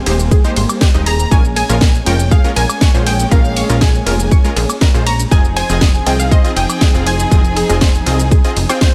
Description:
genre	progressive house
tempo	120 BPM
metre	4/4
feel	straight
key	Bb dorian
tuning	A4 = 442 Hz
part	unison pluck	melody	0.0-8.9 s	C5 to Bb5	-24 LUFS	equal	sidechain pumping, dub echo
part	clear chamber violin section	second line	0.0-8.8 s	Eb5 to Bb5	-30 LUFS	equal	none
part	dark studio string section	sustained chords	0.0-8.9 s	F3 to Ab4	-25 LUFS	equal	sidechain pumping
part	analog pluck	arpeggios	0.1-8.7 s	G4 to Eb6	-28 LUFS	equal	chorus, cassette tape, sidechain pumping, dub echo
part	supersaw stab	stabs	0.1-8.9 s	Ab3 to G5	-25 LUFS	equal	sidechain pumping, dub echo
part	plucky analog bass	bass	0.1-8.7 s	Eb1 to C2	-19 LUFS	equal	sidechain pumping
part	house drum kit	drums	0.1-8.9 s	hi-hat, ride cymbal, shaker, snare drum, woodblock	-22 LUFS	equal	sidechain pumping on hats, sidechain pumping on perc, sidechain pumping on cymbals
part	electronic kick drum	drums	0.3-8.9 s	none	-13 LUFS	equal	none
room	digital ambience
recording	none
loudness	-13 LUFS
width	mono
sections	0.0-8.9 A section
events	none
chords	0.0 Abmaj7; 1.3 Bbm7; 5.3 Fm7

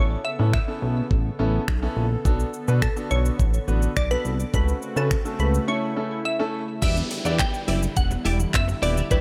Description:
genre	dance-pop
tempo	105 BPM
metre	4/4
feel	straight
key	unclear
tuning	A4 = 440 Hz
part	glassy wavetable pluck	melody	0.0-9.2 s	A4 to G5	-32 LUFS	equal	chorus, tape echo
part	clear concert grand piano	accompaniment	0.0-9.2 s	A3 to D5	-32 LUFS	equal	sidechain pumping
part	warm analog pad	sustained chords	0.0-9.2 s	C#3 to A4	-36 LUFS	equal	chorus, sidechain pumping
part	chorused synth bass	bass	0.0-9.2 s	Eb1 to C#3	-25 LUFS	equal	sidechain pumping
part	smooth R&B drum kit	drums	0.5-9.2 s	crash cymbal, finger snaps, handclaps, hi-hat, kick drum, shaker	-26 LUFS	equal	none
part	swell and downlifter	sound effects	4.8-9.2 s	none	-41 LUFS	equal	none
part	thumb-piano-like synth pluck	arpeggios	6.8-9.2 s	E3 to E5	-37 LUFS	equal	none
part	twelve-string electric guitar	riff	6.8-9.2 s	E4 to D5	-32 LUFS	equal	ensemble chorus
room	little or no reverb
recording	none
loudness	-23 LUFS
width	mono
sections	0.0-6.8 A section; 6.8-9.2 B section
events	break 5.7-6.8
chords	0.0 Aadd9; 2.3 Bm7; 4.5 F#m/C#; 5.7 A; 6.8 Em7

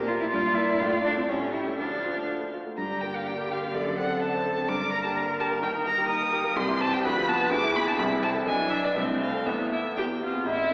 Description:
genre	quick classical-period movement for piano quartet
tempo	125 BPM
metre	2/4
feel	straight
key	G minor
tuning	A4 = 438 Hz
part	rich violin	melody	0.0-10.7 s	Bb4 to Eb6	-28 LUFS	equal	none
part	clear viola	accompaniment	0.0-10.7 s	F3 to B4	-31 LUFS	equal	none
part	warm baby grand piano	accompaniment	0.0-10.7 s	A1 to C5	-29 LUFS	equal	none
part	rich cello	second line	0.1-10.7 s	D3 to F4	-31 LUFS	equal	none
room	wet recital hall reverb, RT60 1.7 s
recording	heard from further back in the room, AM radio sound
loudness	-24 LUFS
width	side -38 dB against mid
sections	0.0-2.8 A section; 2.8-10.5 B section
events	none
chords	0.3 Edim/G; 0.8 Dm/A; 1.3 A7; 1.8 Dm; 2.8 Gm; 3.7 D7/F#; 4.7 Gm; 5.6 Eb; 6.6 C; 7.0 Bdim/D; 7.5 E7/D; 8.0 Am/C; 8.5 E7/B; 9.0 Am/C; 9.5 Esus4; 10.0 E

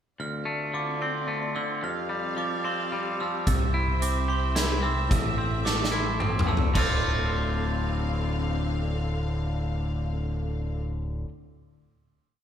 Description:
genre	post-rock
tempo	110 BPM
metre	3/4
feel	straight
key	D minor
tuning	A4 = 441 Hz
part	clear studio string section	sustained chords	0.2-10.8 s	D3 to F5	-36 LUFS	left 2 dB	none
part	glockenspiel with brass mallets	arpeggios	0.2-7.0 s	C6 to F6	-33 LUFS	right 8 dB	none
part	twangy electric guitar	arpeggios	0.2-11.3 s	D2 to G4	-30 LUFS	left 2 dB	none
part	modern bright picked electric bass	bass	3.5-11.2 s	D1 to C2	-28 LUFS	equal	none
part	big rock drum kit	drums	3.5-6.9 s	crash cymbal, hi-hat, kick drum, snare drum, toms	-27 LUFS	equal	none
room	moderate recital hall reverb, RT60 1.5 s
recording	recorded in a church or concert hall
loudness	-25 LUFS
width	side -9 dB against mid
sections	0.2-6.7 A section; 6.7-10.0 final chord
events	drum fill 5.7-6.7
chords	0.2 Dm7; 1.8 Fsus2; 3.5 C; 5.1 Am; 6.7 Dm7

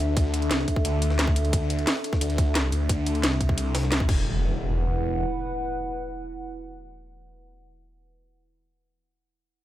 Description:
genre	dark technical drum and bass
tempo	176 BPM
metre	4/4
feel	straight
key	unclear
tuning	A4 = 440 Hz
part	dark analog pad	sustained chords	0.0-7.7 s	D4 to F#5	-30 LUFS	left 1 dB	chorus, phaser, sidechain pumping
part	phased detuned saw bass	bass	0.0-5.2 s	E1 to D2	-25 LUFS	equal	phaser, tube saturation
part	drum and bass drum kit	drums	0.0-4.2 s	crash cymbal, hi-hat, snare drum	-28 LUFS	equal	none
part	jungle sampler-style drum kit	drums	0.0-4.0 s	hi-hat, ride cymbal, snare drum	-36 LUFS	equal	high-pass filter on cymbals, high-pass filter on snare, high-pass filter on hats
part	electronic kick drum	drums	0.2-4.2 s	none	-24 LUFS	equal	none
part	impact	sound effects	4.1-8.1 s	none	-32 LUFS	equal	none
room	light reverb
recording	none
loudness	-22 LUFS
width	side -13 dB against mid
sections	0.0-4.3 A section; 4.3-7.0 B section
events	none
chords	0.0 D5; 4.1 Esus2

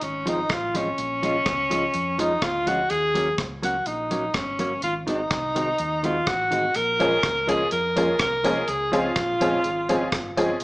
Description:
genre	ska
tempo	125 BPM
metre	4/4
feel	straight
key	Db major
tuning	A4 = 439 Hz
part	clear tenor saxophone	melody	0.0-10.6 s	Db4 to Bb4	-23 LUFS	equal	none
part	hollow-body short-scale fingered electric bass	bass	0.0-10.6 s	G1 to F2	-35 LUFS	equal	none
part	deep reggae drum kit	drums	0.0-10.6 s	hi-hat, kick drum, rim click	-29 LUFS	equal	none
part	hollow-body jazz guitar	accompaniment	0.3-10.5 s	Eb3 to Gb4	-28 LUFS	equal	none
part	honky-tonk upright piano	stabs	7.0-10.5 s	Bb3 to Ab4	-25 LUFS	left 1 dB	none
room	moderate large studio reverb, RT60 1.2 s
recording	band playing live in one room, small speaker sound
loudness	-21 LUFS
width	side -23 dB against mid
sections	0.0-10.6 A section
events	none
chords	0.0 Dbmaj7; 1.0 Bbm7; 2.9 Ebm7; 4.8 Ab7; 6.8 Bbm7; 8.7 Dbmaj7

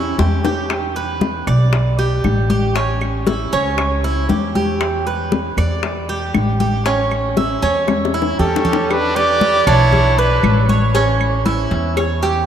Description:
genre	latin, Cuban son and guajira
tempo	117 BPM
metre	4/4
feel	straight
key	unclear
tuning	A4 = 440 Hz
part	Cuban tres	arpeggios	0.0-12.5 s	C#4 to D5	-20 LUFS	right 3 dB	none
part	upright bass	bass	0.0-12.4 s	A1 to E2	-19 LUFS	equal	none
part	bongos and cowbell	percussion	0.2-12.5 s	none	-25 LUFS	left 6 dB	none
part	congas	percussion	0.2-12.5 s	none	-23 LUFS	left 3 dB	none
part	claves	percussion	0.7-12.2 s	none	-34 LUFS	right 6 dB	none
part	clear trumpet	melody	8.4-10.7 s	A4 to D5	-19 LUFS	right 1 dB	none
part	brilliant trumpet	second line	8.4-10.7 s	C#4 to G4	-23 LUFS	right 1 dB	tape echo
room	wet cathedral reverb, RT60 5.3 s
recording	in a vast, echoing space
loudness	-14 LUFS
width	side -9 dB against mid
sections	0.0-8.9 A section; 8.9-12.5 B section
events	drum fill 0.0-0.7, 7.9-8.9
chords	0.0 A7(no3) (rootless); 0.7 Em7; 2.8 A7; 4.8 Em7; 6.9 A7; 8.9 Em7; 10.9 A7

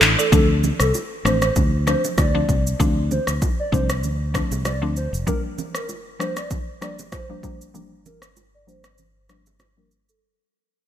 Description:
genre	afrobeats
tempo	97 BPM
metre	4/4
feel	swing 55% on 16ths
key	D minor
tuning	A4 = 439 Hz
part	mallet-like synth pluck	accompaniment	0.0-9.9 s	E3 to E4	-27 LUFS	left 3 dB	chorus, low-pass filter
part	fingered electric bass	bass	0.0-5.2 s	F1 to D2	-22 LUFS	equal	none
part	deep house drum kit	drums	0.0-10.2 s	handclaps, kick drum, rim click, shaker	-21 LUFS	equal	gated reverb
part	hollow clarinet-like synth lead	melody	0.2-10.2 s	A4 to D5	-27 LUFS	right 1 dB	chorus, low-pass filter, ping-pong delay
part	congas and bongos	percussion	0.3-9.8 s	none	-31 LUFS	right 6 dB	none
room	light reverb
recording	bright 1980s-style digital production, faint mains hum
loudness	-19 LUFS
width	side -10 dB against mid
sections	0.3-10.2 A section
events	fade-out 0.3-10.2; filter sweep 0.3-10.2; break 7.7-10.2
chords	0.3 Dm7; 5.3 Gm7

